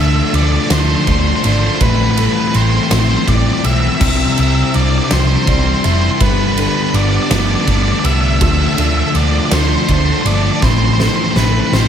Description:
post-rock; 54 BPM (dotted quarters); 6/8; straight; D dorian; A4 = 442 Hz
octave-fuzz lead guitar; melody; 0.0-11.9 s; B4 to E5; -19 LUFS; equal; distortion, slapback echo
airy breathy pad; sustained chords; 0.0-11.9 s; C4 to A5; -32 LUFS; equal
clean electric guitar; arpeggios; 0.0-11.9 s; A2 to B4; -23 LUFS; left 3 dB
felt-muted upright piano; arpeggios; 0.0-11.7 s; F4 to B5; -29 LUFS; right 5 dB; slapback echo
cranked stack guitar; riff; 0.0-11.9 s; G2 to E4; -21 LUFS; right 10 dB; overdrive, spring reverb, slapback echo
sludgy distorted guitar; riff; 0.0-11.9 s; G2 to E4; -20 LUFS; left 10 dB; overdrive
hollow-body short-scale picked electric bass; bass; 0.0-11.9 s; F1 to D2; -16 LUFS; right 1 dB
huge arena drum kit; drums; 0.3-11.9 s; crash cymbal, kick drum, ride cymbal, snare drum; -18 LUFS; right 1 dB
light reverb, small room ambience; -11 LUFS; side -8 dB against mid
0.0-11.9 A section
drum fill 10.6-11.9
0.0 Dm; 1.8 Am7; 4.0 Cadd9; 6.2 Gadd9; 8.4 Dm; 10.6 Am7

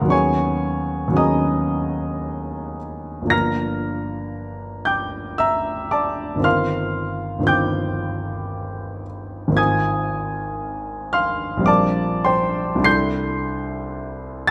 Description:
classical, impressionist solo piano; 57 BPM; 3/4; rubato; A4 = 439 Hz
clear grand piano; solo; 0.0-14.5 s; G1 to C7; -22 LUFS; equal
moderate recital hall reverb, RT60 1.8 s; close, detailed microphones; -22 LUFS; mono
0.0-14.5 A section
0.1 Db9sus4/Eb; 3.3 Gm7; 6.5 F9sus4/G; 9.6 Ab69; 11.7 Bb69; 12.9 C69

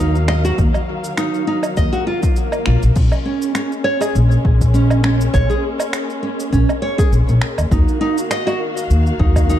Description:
organic downtempo; 101 BPM; 4/4; swing 55% on 16ths; A4 = 440 Hz
dark studio string section; sustained chords; 0.0-9.6 s; Eb3 to F5; -25 LUFS; left 2 dB; sidechain pumping
nylon-string guitar; arpeggios; 0.0-9.6 s; Db4 to Eb5; -21 LUFS; right 2 dB; vintage 12-bit sampler grit, tape echo
upright bass; bass; 0.0-9.6 s; Bb1 to Eb2; -15 LUFS; left 1 dB; sidechain pumping
deep house drum kit; drums; 0.2-9.6 s; cabasa, crash cymbal, finger snaps, woodblock; -26 LUFS; right 2 dB; overdrive
electronic kick drum; drums; 0.6-9.5 s; -17 LUFS; equal; overdrive
swell; sound effects; 2.0-3.0 s; -29 LUFS; left 2 dB
light reverb, studio reverb; dark, warm production; -14 LUFS; side -11 dB against mid
0.0-3.0 A section; 3.0-9.6 B section
swell 2.0-3.0
0.0 Ebmadd9; 3.0 Bbm7; 7.7 Ebmadd9

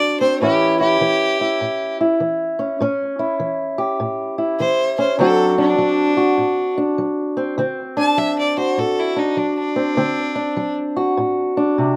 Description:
acoustic country blues, solo or duo; 100 BPM; 4/4; swing 64% on 8ths; A4 = 440 Hz
rich fiddle; melody; 0.0-10.7 s; D4 to A5; -23 LUFS; equal
fingerpicked old ladder-braced acoustic guitar; accompaniment; 0.0-12.0 s; A2 to G4; -20 LUFS; equal
light reverb; recorded outdoors, with no room sound; -19 LUFS; mono
0.0-12.0 A section
0.4 A7; 5.2 D7

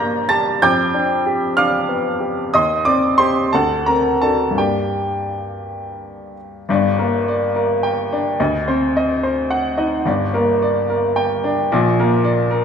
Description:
classical, romantic character piece for solo piano; 54-76 BPM (dotted quarters); 6/8; rubato; G minor; A4 = 445 Hz
clear upright piano; solo; 0.0-12.6 s; G1 to Bb6; -16 LUFS; equal
wet recital hall reverb, RT60 1.5 s; minimal, uncompressed stereo recording; -15 LUFS; side -7 dB against mid
0.0-6.7 A section; 6.7-12.6 B section
0.0 Gm; 0.6 G7/F; 2.5 Cm/Eb; 3.5 D7; 4.5 Gm; 8.4 D7b9; 10.0 Gm; 11.7 Gm/Bb (rootless)

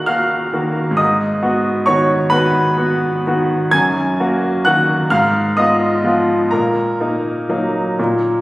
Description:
classical, romantic nocturne for solo piano; 40-45 BPM (dotted quarters); 6/8; rubato; Eb minor; A4 = 439 Hz
clear grand piano; solo; 0.0-8.4 s; Eb2 to Ab6; -14 LUFS; equal
wet scoring stage reverb, RT60 1.7 s; recorded on a phone in the room, studio reverb; -14 LUFS; side -18 dB against mid
0.0-8.4 A section
0.0 Ebm; 1.0 Abm7; 3.7 Ebm/Gb; 5.1 Fm7b5/Ab; 6.5 Ebm/Bb

